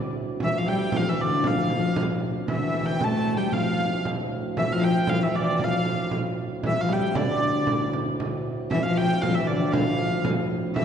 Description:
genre	medieval dance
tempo	116 BPM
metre	2/4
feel	straight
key	D minor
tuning	A4 = 440 Hz
part	hand-pumped harmonium	drone	0.0-10.8 s	D2 to A2	-32 LUFS	right 3 dB	none
part	rich hurdy-gurdy	melody	0.4-10.8 s	D5 to A5	-28 LUFS	equal	none
part	dark viola da gamba	second line	0.4-10.8 s	C3 to A3	-26 LUFS	left 2 dB	none
part	frame drum	percussion	0.4-10.8 s	none	-28 LUFS	right 3 dB	none
room	wet concert hall reverb, RT60 2.5 s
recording	dark, warm production, nothing above 10.9 kHz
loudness	-22 LUFS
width	side -8 dB against mid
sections	0.0-8.2 A section; 8.2-10.8 A section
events	none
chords	none

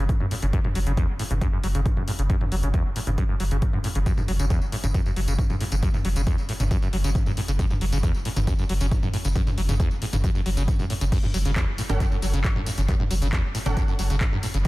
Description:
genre	driving peak-time techno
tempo	136 BPM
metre	4/4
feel	straight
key	F# minor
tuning	A4 = 444 Hz
part	acid bass, saw	riff	0.0-14.7 s	E2 to F#3	-28 LUFS	equal	wide subtle chorus, sidechain pumping, dub echo
part	warm sub bass	bass	0.0-14.6 s	F#1	-27 LUFS	equal	tube saturation, sidechain pumping, low-pass filter
part	electronic kick drum	drums	0.1-14.7 s	none	-25 LUFS	equal	overdrive
part	punchy analog drum machine	drums	0.1-14.7 s	crash cymbal, handclaps, hi-hat, tambourine, toms	-30 LUFS	equal	overdrive, sidechain pumping on hats, sidechain pumping on toms, sidechain pumping on cymbals, sidechain pumping on perc
part	rave stab	stabs	11.9-13.7 s	C#4 to F#5	-34 LUFS	right 2 dB	chorus, built-in reverb, sidechain pumping, dub echo
room	light reverb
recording	echo-heavy mix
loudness	-21 LUFS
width	side -19 dB against mid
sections	0.0-11.1 A section; 11.1-14.7 B section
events	drop 11.1-14.7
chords	0.0 N.C.; 11.1 F#m

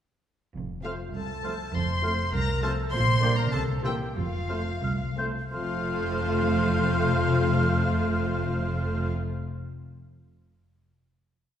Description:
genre	cinematic, playful, whimsical film cue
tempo	86-101 BPM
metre	2/4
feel	straight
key	F major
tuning	A4 = 440 Hz
part	warm chamber cello section	bass	0.6-9.1 s	C2 to C3	-30 LUFS	right 2 dB	none
part	warm chamber double bass section	bass	0.6-9.1 s	F1 to C2	-30 LUFS	equal	none
part	dark chamber violin section	melody	0.8-9.1 s	F5 to C6	-33 LUFS	left 4 dB	none
part	hollow concert flute	second line	0.8-9.1 s	E6 to G6	-34 LUFS	equal	none
part	warm chamber violin section	second line	0.8-9.1 s	C4 to A4	-39 LUFS	left 3 dB	none
part	warm oboe	second line	0.8-9.1 s	C5 to D5	-38 LUFS	equal	none
part	dark bassoon	accompaniment	0.8-9.1 s	A3 to Bb3	-38 LUFS	right 2 dB	none
part	warm studio viola section	accompaniment	0.8-9.1 s	D3 to Bb3	-34 LUFS	right 2 dB	none
part	mellow clarinet	second line	0.9-9.1 s	F4 to C5	-36 LUFS	equal	none
part	dark French horn section	sustained chords	0.9-9.1 s	G3 to F4	-36 LUFS	left 3 dB	none
room	wet scoring stage reverb, RT60 1.8 s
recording	heard from further back in the room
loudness	-24 LUFS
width	side -9 dB against mid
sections	0.6-5.5 A section; 5.5-8.3 final chord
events	slowing down 2.3-5.5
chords	0.6 F; 2.9 Gm/Bb; 3.5 C7; 4.2 F

